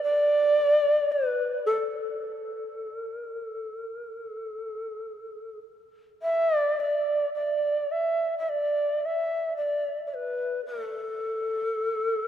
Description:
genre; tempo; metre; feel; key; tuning
japanese traditional, Japanese chamber music; 51-56 BPM; 4/4; rubato; unclear; A4 = 440 Hz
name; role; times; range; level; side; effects
long shakuhachi; solo; 0.0-12.3 s; A4 to E5; -25 LUFS; equal; none
room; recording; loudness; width
wet cathedral reverb, RT60 4.4 s; minimal, uncompressed stereo recording; -25 LUFS; side -10 dB against mid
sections
0.0-6.2 A section; 6.2-12.3 B section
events
none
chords
none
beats
0.57 | 1.66 2.77 3.90 5.05 | 6.21 7.34 8.47 9.57 | 10.64 11.73

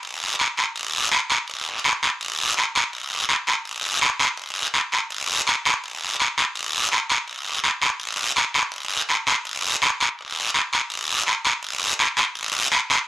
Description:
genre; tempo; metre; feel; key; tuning
latin; 166 BPM; 4/4; straight; none; none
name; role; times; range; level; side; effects
guiro; percussion; 0.0-13.1 s; none; -20 LUFS; equal; none
room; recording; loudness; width
moderate studio reverb, RT60 0.5 s; home recording on cassette; -20 LUFS; side -16 dB against mid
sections
0.0-11.6 A section; 11.6-13.1 B section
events
none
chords
none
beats
| 0.03 0.39 0.75 1.11 | 1.48 1.84 2.20 2.56 | 2.93 3.29 3.65 4.01 | 4.38 4.74 5.10 5.47 | 5.83 6.19 6.55 6.92 | 7.28 7.64 8.00 8.37 | 8.73 9.09 9.45 9.82 | 10.18 10.54 10.90 11.27 | 11.63 11.99 12.35 12.71 | 13.08

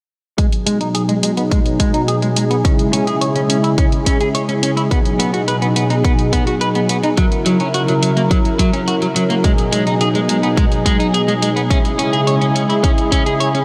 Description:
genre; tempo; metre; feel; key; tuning
synthwave; 106 BPM; 4/4; straight; G# minor; A4 = 436 Hz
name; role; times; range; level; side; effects
soft supersaw; sustained chords; 0.4-13.6 s; B2 to A#4; -19 LUFS; equal; sidechain pumping, low-pass filter
electric guitar at the edge of break-up; riff; 0.4-13.6 s; F#3 to C#5; -22 LUFS; equal; subtle chorus, low-pass filter, delay
electronic hi-hat; drums; 0.4-13.6 s; none; -26 LUFS; equal; studio reverb
electronic kick drum; drums; 0.4-13.2 s; none; -18 LUFS; equal; studio reverb
room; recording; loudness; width
moderate huge ambient reverb, RT60 7.3 s; dreamy mix soaked in reverb; -16 LUFS; mono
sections
0.4-13.6 A section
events
filter sweep on supersaw synth 0.4-13.6; filter sweep on clean electric guitar 0.4-13.6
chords
0.4 G#m7; 2.6 C#m; 4.9 B6; 7.2 F#7; 9.4 G#m7; 11.7 C#m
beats
| 0.38 0.95 1.52 2.08 | 2.65 3.21 3.78 4.35 | 4.91 5.48 6.04 6.61 | 7.18 7.74 8.31 8.88 | 9.44 10.01 10.57 11.14 | 11.71 12.27 12.84 13.40

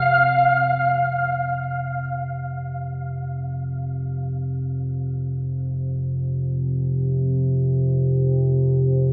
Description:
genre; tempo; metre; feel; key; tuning
ambient; free time; none; none; unclear; A4 = 441 Hz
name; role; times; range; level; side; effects
deep rumbling drone; drone; 0.0-9.1 s; F2 to C3; -21 LUFS; equal; built-in reverb, lush chorus
room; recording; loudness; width
wet cathedral reverb, RT60 6.5 s; dreamy mix soaked in reverb, AM radio sound; -20 LUFS; side -35 dB against mid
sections
0.0-9.1 A section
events
none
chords
0.0 F5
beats
free time

